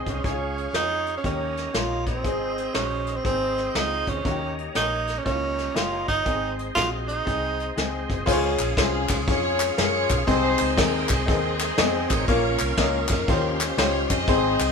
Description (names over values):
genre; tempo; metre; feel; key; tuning
uptempo gospel; 120 BPM; 4/4; swing 65% on 8ths; Db major; A4 = 440 Hz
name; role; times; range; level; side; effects
clear grand piano; accompaniment; 0.0-14.7 s; Ab2 to Eb5; -27 LUFS; left 3 dB; none
bright tonewheel organ; sustained chords; 0.0-14.7 s; Db4 to Db6; -32 LUFS; right 2 dB; fast rotary speaker, chorus vibrato
breathy tenor saxophone; melody; 0.1-7.7 s; C4 to F4; -26 LUFS; right 3 dB; none
vintage muted fingered electric bass; bass; 0.1-14.7 s; Gb1 to Gb2; -31 LUFS; equal; none
soft brush drum kit; drums; 0.1-14.7 s; crash cymbal, hi-hat, kick drum, ride cymbal, snare drum; -26 LUFS; equal; none
group handclap; percussion; 8.6-14.7 s; none; -30 LUFS; left 3 dB; none
warm symphonic string section; melody; 8.8-14.7 s; C4 to Eb5; -27 LUFS; left 2 dB; none
room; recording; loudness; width
moderate stone room reverb, RT60 1.1 s; band playing live in one room; -21 LUFS; side -5 dB against mid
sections
0.0-8.3 A section; 8.3-14.7 B section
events
none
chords
0.2 Db; 1.2 Eb7; 2.2 Ab; 4.3 Eb7; 6.3 Ab; 8.3 Db; 10.3 Ab/C; 12.3 Bbm; 13.3 Eb13